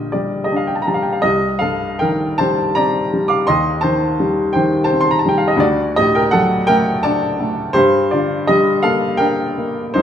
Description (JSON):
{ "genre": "classical, romantic nocturne for solo piano", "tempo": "52-57 BPM (dotted quarters)", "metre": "12/8", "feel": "rubato", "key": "G minor", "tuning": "A4 = 441 Hz", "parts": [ { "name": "warm upright piano", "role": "solo", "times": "0.0-10.0 s", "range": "Bb1 to D6", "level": "-14 LUFS", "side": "equal", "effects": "none" } ], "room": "wet stone room reverb, RT60 1.2 s", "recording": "none", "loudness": "-14 LUFS", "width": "side -9 dB against mid", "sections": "0.0-10.0 A section", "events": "none", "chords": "0.0 Gm/Bb; 1.3 Cm; 3.5 Cm/Eb; 5.6 D; 7.8 Gm" }